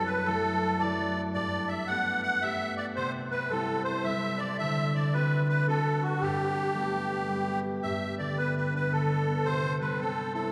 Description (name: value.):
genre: celtic folk.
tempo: 111 BPM.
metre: 3/4.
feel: swing 64% on 8ths.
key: G major.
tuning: A4 = 439 Hz.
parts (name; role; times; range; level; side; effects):
musette accordion; melody; 0.0-10.5 s; F#4 to F#5; -31 LUFS; equal; none.
concert harp; accompaniment; 0.0-10.5 s; F#2 to G4; -33 LUFS; equal; none.
room: wet cathedral reverb, RT60 5.2 s.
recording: recorded in a church or concert hall, small room ambience.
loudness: -29 LUFS.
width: mono.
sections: 0.0-7.8 A section; 7.8-10.5 B section.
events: none.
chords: 0.0 F#m7; 1.4 Gadd9; 3.0 C; 4.6 D7; 6.2 Gadd9; 9.5 C.